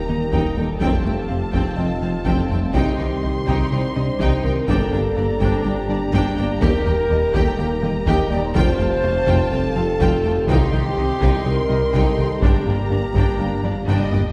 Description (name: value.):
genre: cinematic, hybrid orchestral and electronic film score.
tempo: 124 BPM.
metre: 4/4.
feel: straight.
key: G minor.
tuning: A4 = 442 Hz.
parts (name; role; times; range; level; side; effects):
warm symphonic violin section; melody; 0.0-14.3 s; Eb5 to C6; -36 LUFS; equal; none.
clear French horn section; sustained chords; 0.0-13.9 s; C4 to Eb5; -27 LUFS; equal; none.
hollow soft pad; sustained chords; 0.0-14.3 s; G3 to G5; -32 LUFS; equal; none.
detuned saw bass; bass; 0.0-14.3 s; Eb1 to C2; -32 LUFS; equal; none.
sub drop; sound effects; 0.0-0.8 s; none; barely audible; none; none.
felt-muted upright piano; texture; 0.0-14.3 s; C4 to F5; -39 LUFS; equal; none.
rich symphonic violin section; second line; 0.1-14.2 s; D5 to G5; -35 LUFS; equal; none.
clear symphonic viola section; accompaniment; 0.1-14.2 s; C4 to G4; -32 LUFS; equal; none.
thumb-piano-like synth pluck; arpeggios; 0.1-14.3 s; C3 to D4; -31 LUFS; equal; none.
rubbery square bass; riff; 0.1-14.3 s; C2 to G3; -28 LUFS; equal; none.
clear symphonic double bass section; bass; 0.1-14.2 s; F1 to Eb2; -32 LUFS; equal; none.
rich symphonic cello section; bass; 0.1-14.2 s; Eb2 to C3; -30 LUFS; equal; none.
warm tuba; bass; 0.1-14.2 s; F1 to Eb2; -31 LUFS; equal; none.
taiko ensemble; drums; 0.3-14.3 s; none; -26 LUFS; equal; none.
room: wet scoring stage reverb, RT60 1.7 s.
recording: heard from further back in the room.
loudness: -19 LUFS.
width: mono.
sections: 0.0-14.3 A section.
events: impact 0.0-0.8; drum fill 13.6-14.3.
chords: 0.0 Eb; 0.8 Fadd9; 2.7 Cm; 4.7 Gm; 6.6 Eb; 8.6 Fadd9; 10.5 Cm; 12.4 Gm.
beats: 0.33 | 0.81 1.30 1.78 2.26 | 2.75 3.23 3.72 4.20 | 4.68 5.17 5.65 6.13 | 6.62 7.10 7.59 8.07 | 8.55 9.04 9.52 10.01 | 10.49 10.97 11.46 11.94 | 12.43 12.91 13.39 13.88.